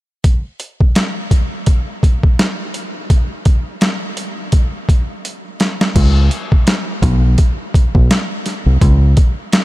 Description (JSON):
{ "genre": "hip hop, boom-bap hip-hop", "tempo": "84 BPM", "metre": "4/4", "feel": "swing 57% on 16ths", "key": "unclear", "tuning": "A4 = 436 Hz", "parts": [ { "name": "boom bap sampler-style drum kit", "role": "drums", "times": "0.2-9.6 s", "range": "crash cymbal, hi-hat, kick drum, snare drum", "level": "-14 LUFS", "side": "equal", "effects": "none" }, { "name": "deep dub fingered electric bass", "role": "bass", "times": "6.0-9.1 s", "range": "B1 to C#2", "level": "-10 LUFS", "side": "equal", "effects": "none" } ], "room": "little or no reverb", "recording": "none", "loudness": "-12 LUFS", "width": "side -18 dB against mid", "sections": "0.2-6.0 A section; 6.0-9.6 B section", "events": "drum fill 5.2-6.0", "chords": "none" }